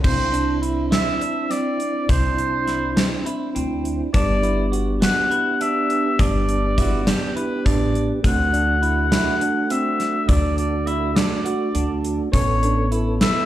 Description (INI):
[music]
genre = progressive instrumental, band music in an uneven meter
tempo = 205 BPM (eighths)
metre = 7/8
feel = straight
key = C lydian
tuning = A4 = 440 Hz
[part]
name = warm oboe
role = melody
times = 0.0-13.5 s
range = C5 to F#5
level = -23 LUFS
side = left 1 dB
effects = slapback echo
[part]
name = percussive tonewheel organ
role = accompaniment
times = 0.0-13.5 s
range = A3 to A4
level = -25 LUFS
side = right 1 dB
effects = chorus vibrato, slow rotary speaker
[part]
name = semi-hollow electric guitar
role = arpeggios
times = 0.0-13.4 s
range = C4 to F#4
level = -29 LUFS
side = right 4 dB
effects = phaser, slapback echo
[part]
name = upright bass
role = bass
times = 0.0-13.2 s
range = G1 to D2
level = -23 LUFS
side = equal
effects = none
[part]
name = gated 80s drum kit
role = drums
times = 0.0-13.3 s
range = crash cymbal, hi-hat, kick drum, snare drum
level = -21 LUFS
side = equal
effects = none
[part]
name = bright alto saxophone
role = second line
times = 6.8-8.1 s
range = F#4 to D5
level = -33 LUFS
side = left 1 dB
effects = slapback echo
[sound]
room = light reverb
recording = live gig heard through the venue's PA, club reverb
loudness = -18 LUFS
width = side -13 dB against mid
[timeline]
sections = 0.0-13.5 A section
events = none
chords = 0.0 Cadd9; 4.1 G; 8.2 D; 12.3 Aadd9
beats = | 0.04 0.34 0.63 0.92 1.21 1.51 1.80 | 2.09 2.38 2.68 2.97 3.26 3.56 3.85 | 4.14 4.43 4.73 5.02 5.31 5.61 5.90 | 6.19 6.48 6.78 7.07 7.36 7.65 7.95 | 8.24 8.53 8.82 9.12 9.41 9.70 9.99 | 10.29 10.58 10.87 11.16 11.46 11.75 12.04 | 12.34 12.63 12.92 13.21